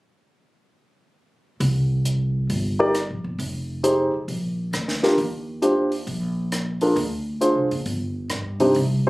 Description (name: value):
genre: jazz piano trio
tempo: 135 BPM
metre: 4/4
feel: swing 66% on 8ths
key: C minor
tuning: A4 = 444 Hz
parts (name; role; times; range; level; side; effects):
- upright bass; bass; 1.6-9.1 s; F1 to G2; -25 LUFS; equal; none
- compact cocktail drum kit; drums; 1.6-8.9 s; hi-hat, rim click, snare drum; -31 LUFS; right 1 dB; none
- warm grand piano; melody; 2.8-9.1 s; C3 to D5; -18 LUFS; equal; none
room: little or no reverb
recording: recorded on a phone in the room, club reverb, compression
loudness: -21 LUFS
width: side -20 dB against mid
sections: 1.6-8.7 A section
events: none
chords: 1.6 C5; 3.4 Fm7; 4.3 Bb; 5.2 Ebmaj7sus2; 7.0 Dm7b5; 7.9 G5